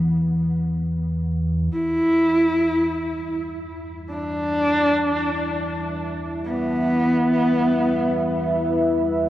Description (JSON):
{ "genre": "ambient", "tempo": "51 BPM", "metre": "4/4", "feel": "straight", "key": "E minor", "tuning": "A4 = 439 Hz", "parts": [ { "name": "warm horsehead fiddle", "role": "melody", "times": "0.0-8.8 s", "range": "B3 to E4", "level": "-21 LUFS", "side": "equal", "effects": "ping-pong delay" }, { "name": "analog drone", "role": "drone", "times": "0.0-9.3 s", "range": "E2 to E3", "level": "-26 LUFS", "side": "equal", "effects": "chorus" }, { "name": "deep dark ambient pad", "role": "sustained chords", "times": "4.1-9.3 s", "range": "G3 to E5", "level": "-24 LUFS", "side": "equal", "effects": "chorus, built-in reverb" } ], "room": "wet cathedral reverb, RT60 6.1 s", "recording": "worn, warbling old tape, cassette tape, warbly pitch drift", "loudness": "-19 LUFS", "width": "side -13 dB against mid", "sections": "0.0-1.8 A section; 1.8-9.3 B section", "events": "fade-in on synth drone 1.8-9.3", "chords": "0.0 N.C.; 1.8 Em" }